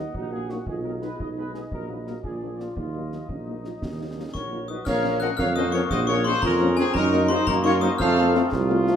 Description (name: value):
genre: military-style march for wind band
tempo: 115 BPM (dotted quarters)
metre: 6/8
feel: straight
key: Eb minor, Bb minor from 4.9 s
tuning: A4 = 441 Hz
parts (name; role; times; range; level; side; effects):
- dark trumpet section; melody; 0.0-8.5 s; Eb4 to Gb5; -30 LUFS; equal; none
- mellow euphonium; second line; 0.0-4.8 s; Db4 to Gb4; -36 LUFS; right 3 dB; none
- mellow woodwind section; second line; 0.0-8.5 s; F4 to Gb5; -33 LUFS; left 2 dB; none
- mellow French horn section; accompaniment; 0.0-8.9 s; F3 to F4; -30 LUFS; left 5 dB; none
- mellow tuba; bass; 0.0-9.0 s; Bb1 to Gb2; -26 LUFS; right 3 dB; none
- concert bass drum, concert snare drum and clash cymbals; drums; 0.1-9.0 s; none; -34 LUFS; equal; none
- glockenspiel with brass mallets; second line; 4.3-8.5 s; Ab5 to Gb6; -29 LUFS; left 5 dB; none
- mellow small flute group; second line; 4.3-8.5 s; C4 to Bb4; -30 LUFS; equal; none
- mellow trombone section; sustained chords; 5.4-9.0 s; A3 to F4; -28 LUFS; right 1 dB; none
room: wet large studio reverb, RT60 1.3 s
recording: none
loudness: -22 LUFS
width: side -8 dB against mid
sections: 0.0-4.9 A section; 4.9-9.0 B section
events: none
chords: 0.0 Ebm; 0.7 Abm/Cb; 1.7 Ebm/Bb; 2.2 Bb7; 2.8 Ebm; 4.9 Bbm; 7.0 Ebm/Gb; 8.0 F